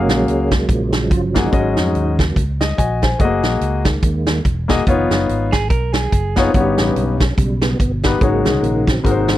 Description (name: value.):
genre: uptempo gospel.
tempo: 144 BPM.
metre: 4/4.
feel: swing 58% on 8ths.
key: unclear.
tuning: A4 = 440 Hz.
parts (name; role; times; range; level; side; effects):
clear concert grand piano; accompaniment; 0.0-9.4 s; G2 to Ab5; -18 LUFS; left 4 dB; none.
tonewheel organ; sustained chords; 0.0-9.4 s; B2 to F4; -21 LUFS; right 2 dB; slow rotary speaker, chorus vibrato.
fingered electric bass; bass; 0.0-9.4 s; Fb1 to F2; -21 LUFS; equal; none.
swinging big-band drum kit; drums; 0.1-9.4 s; hi-hat, kick drum, snare drum; -18 LUFS; right 1 dB; none.
clean electric guitar; second line; 5.5-6.5 s; Ab4 to Bb4; -23 LUFS; right 5 dB; none.
room: little or no reverb.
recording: dry, close 1970s-style studio recording.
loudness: -14 LUFS.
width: side -14 dB against mid.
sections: 0.0-9.4 A section.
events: tonewheel organ solo 0.0-9.4; grand piano fill 2.4-3.2.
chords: 0.0 Gbmaj9; 1.5 Ab7sus4; 3.2 Gb69; 4.9 Db9/F; 6.5 Ebaug7/G; 8.2 Ab7sus4.